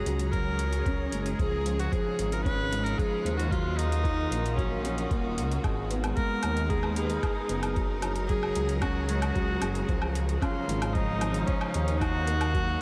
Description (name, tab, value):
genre	piano and strings electronica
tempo	113 BPM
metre	4/4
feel	straight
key	unclear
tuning	A4 = 440 Hz
part	rich viola	melody	0.0-12.8 s	C#4 to B4	-35 LUFS	equal	diffuse ambient delay
part	warm string quartet	sustained chords	0.0-12.8 s	C#3 to A#5	-40 LUFS	equal	none
part	felt-muted upright piano	riff	0.0-12.8 s	E#3 to G#4	-36 LUFS	equal	subtle chorus, diffuse ambient delay
part	dark detuned saw bass	bass	0.1-12.8 s	D#1 to D#2	-33 LUFS	equal	sidechain pumping
part	electronic hi-hat and woodblock	drums	0.1-12.7 s	none	-41 LUFS	equal	overdrive
part	electronic kick drum	drums	0.3-12.6 s	none	-32 LUFS	equal	none
room	moderate huge ambient reverb, RT60 8.2 s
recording	dreamy mix soaked in reverb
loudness	-28 LUFS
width	mono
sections	0.0-12.8 A section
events	none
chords	0.0 F#add9; 1.4 C#; 3.5 D#m7; 5.6 G#m; 7.8 F#add9; 9.9 C#; 12.0 D#m